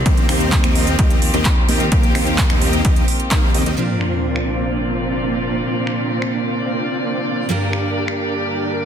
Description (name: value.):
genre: EDM, festival progressive house.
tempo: 129 BPM.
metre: 4/4.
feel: straight.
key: Bb major.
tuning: A4 = 440 Hz.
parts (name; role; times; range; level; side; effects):
clear studio string section; sustained chords; 0.0-8.8 s; G2 to D5; -24 LUFS; equal; sidechain pumping, low-pass filter.
fat analog bass; bass; 0.0-3.8 s; Eb2; -23 LUFS; equal; tube saturation, sidechain pumping.
dense compressed supersaw; riff; 0.1-8.8 s; Bb3 to F5; -21 LUFS; right 1 dB; sidechain pumping, low-pass filter, dub echo.
big-room dance drum kit; drums; 0.1-8.2 s; finger snaps, handclaps, hi-hat; -24 LUFS; right 1 dB; overdrive, low-pass filter on hats, low-pass filter on snare, low-pass filter on room.
electronic kick drum; drums; 0.1-3.4 s; none; -16 LUFS; equal; overdrive.
picked steel-string acoustic guitar; accompaniment; 3.8-8.8 s; G2 to Bb4; -26 LUFS; right 1 dB; sidechain pumping.
sub drop; sound effects; 3.8-5.6 s; none; -26 LUFS; equal; none.
room: light reverb, digital ambience.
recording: dense, heavily limited modern master.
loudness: -15 LUFS.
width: side -8 dB against mid.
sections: 0.0-3.8 A section; 3.8-8.8 B section.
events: drop 0.0-3.8; impact 3.8-5.6; filter sweep on string section 3.8-8.8.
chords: 0.1 Eb6; 3.8 Bbadd9; 7.5 Gm.